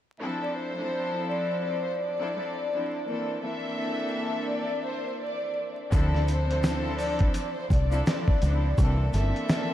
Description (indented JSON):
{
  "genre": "hip hop, boom-bap hip-hop",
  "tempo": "84 BPM",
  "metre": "4/4",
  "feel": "swing 58% on 16ths",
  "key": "D minor",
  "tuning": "A4 = 440 Hz",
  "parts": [
    { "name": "warm studio string section", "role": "accompaniment", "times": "0.2-9.7 s", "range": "E3 to A4", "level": "-31 LUFS", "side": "left 1 dB", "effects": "high-pass filter, low-pass filter" },
    { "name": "warm studio violin section", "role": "melody", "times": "0.4-9.7 s", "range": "C5 to E5", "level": "-31 LUFS", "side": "left 1 dB", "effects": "high-pass filter, low-pass filter, analog delay" },
    { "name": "deep dub fingered electric bass", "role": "bass", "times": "5.9-9.3 s", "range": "G1 to D2", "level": "-25 LUFS", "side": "equal", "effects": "none" },
    { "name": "dusty soul sampler-style drum kit", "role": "drums", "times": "5.9-9.7 s", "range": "hi-hat, kick drum, snare drum", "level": "-26 LUFS", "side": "equal", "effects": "none" },
    { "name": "tube shaker", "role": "percussion", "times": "5.9-9.7 s", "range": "none", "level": "-52 LUFS", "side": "right 3 dB", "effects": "none" }
  ],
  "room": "moderate huge ambient reverb, RT60 8.9 s",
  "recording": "dreamy mix soaked in reverb, vinyl crackle",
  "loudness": "-25 LUFS",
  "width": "side -12 dB against mid",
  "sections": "0.2-5.9 A section; 5.9-9.7 B section",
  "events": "none",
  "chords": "0.2 Dm9; 3.1 C13; 5.9 Dm9; 8.8 C13",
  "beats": "| 0.21 0.92 1.64 2.35 | 3.07 3.78 4.50 5.21 | 5.92 6.64 7.35 8.07 | 8.78 9.49"
}